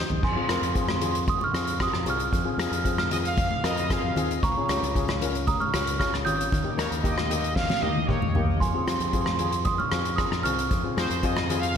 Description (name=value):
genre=calypso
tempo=115 BPM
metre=4/4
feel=straight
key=F minor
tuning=A4 = 440 Hz
part: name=steel pan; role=accompaniment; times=0.0-11.8 s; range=Bb3 to C5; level=-30 LUFS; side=left 4 dB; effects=slapback echo
part: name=fingered electric bass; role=bass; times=0.1-11.8 s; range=Ab1 to F2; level=-31 LUFS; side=equal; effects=none
part: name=soft-mallet drum kit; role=drums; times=0.1-11.7 s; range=crash cymbal, hi-hat, kick drum, rim click, snare drum, toms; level=-27 LUFS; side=left 1 dB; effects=none
part: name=congas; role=percussion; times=0.1-11.6 s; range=none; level=-38 LUFS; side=left 2 dB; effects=none
part: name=celesta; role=melody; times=0.2-11.5 s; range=Ab5 to G6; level=-29 LUFS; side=right 5 dB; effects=slapback echo, ping-pong delay
part: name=clear horn section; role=second line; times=3.1-11.8 s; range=C5 to F5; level=-31 LUFS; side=right 2 dB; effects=slapback echo, ping-pong delay
room=moderate lush hall reverb, RT60 1.7 s, small room ambience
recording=big arena sound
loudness=-23 LUFS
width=side -8 dB against mid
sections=0.2-11.8 A section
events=drum fill 0.0, 7.6-8.6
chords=0.2 Fm; 4.4 Db6; 6.5 Eb; 8.6 Fm